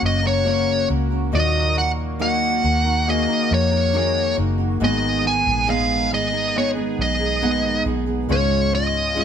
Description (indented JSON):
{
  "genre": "pop ballad",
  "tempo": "69 BPM",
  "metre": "4/4",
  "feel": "straight",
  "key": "unclear",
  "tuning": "A4 = 439 Hz",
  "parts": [
    { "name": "warm concert grand piano", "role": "accompaniment", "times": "0.0-9.2 s", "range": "G#2 to F#5", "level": "-24 LUFS", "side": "left 2 dB", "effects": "none" },
    { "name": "sweeping resonant pad", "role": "sustained chords", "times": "0.0-9.2 s", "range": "C#3 to G#4", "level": "-32 LUFS", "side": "right 2 dB", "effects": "chorus" },
    { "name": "fingerpicked steel-string acoustic guitar", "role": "arpeggios", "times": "0.0-9.2 s", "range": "G#2 to A#4", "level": "-30 LUFS", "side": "right 6 dB", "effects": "none" },
    { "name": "vintage muted fingered electric bass", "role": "bass", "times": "0.0-9.2 s", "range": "F#1 to E#2", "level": "-23 LUFS", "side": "equal", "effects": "none" },
    { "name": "fuzz lead guitar", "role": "melody", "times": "0.1-9.2 s", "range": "C#5 to G#5", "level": "-20 LUFS", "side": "equal", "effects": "distortion" }
  ],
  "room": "light reverb",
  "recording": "band playing live in one room",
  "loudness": "-17 LUFS",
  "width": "side -8 dB against mid",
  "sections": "0.0-9.2 A section",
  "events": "none",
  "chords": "0.0 F#; 1.3 D#m; 4.8 G#m; 8.3 C#"
}